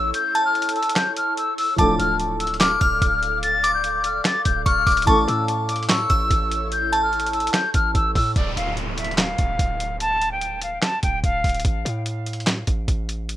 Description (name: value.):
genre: hip hop, trap.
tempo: 146 BPM.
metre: 4/4.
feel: half-time.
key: D harmonic minor.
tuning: A4 = 440 Hz.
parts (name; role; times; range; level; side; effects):
silver concert flute; melody; 0.0-11.6 s; D5 to A6; -22 LUFS; left 2 dB; low-pass filter, ping-pong delay.
glassy synth bell; second line; 0.0-7.9 s; A5 to F6; -24 LUFS; equal; chorus, ping-pong delay.
felt-muted upright piano; accompaniment; 0.0-8.4 s; E3 to A4; -27 LUFS; left 1 dB; low-pass filter.
ethereal airy pad; sustained chords; 0.0-8.3 s; E4 to D6; -32 LUFS; right 2 dB; ensemble chorus, built-in reverb.
hard-hitting 808-style bass; bass; 0.0-13.4 s; D1 to A2; -28 LUFS; right 1 dB; none.
dusty soul sampler-style drum kit; drums; 0.1-13.4 s; handclaps, hi-hat, kick drum, snare drum; -22 LUFS; equal; none.
downlifter; sound effects; 8.4-11.6 s; none; -32 LUFS; equal; none.
room: light reverb.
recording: rough home demo mix.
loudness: -18 LUFS.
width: side -13 dB against mid.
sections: 0.0-8.4 A section; 8.4-13.4 B section.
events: kick muted 0.1-1.8.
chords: 0.0 A; 1.8 Dm; 5.1 A; 8.4 Dm; 11.6 N.C..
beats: | 0.14 0.55 0.96 1.37 | 1.78 2.19 2.61 3.02 | 3.43 3.84 4.25 4.66 | 5.07 5.48 5.89 6.30 | 6.72 7.13 7.54 7.95 | 8.36 8.77 9.18 9.59 | 10.00 10.41 10.83 11.24 | 11.65 12.06 12.47 12.88 | 13.29.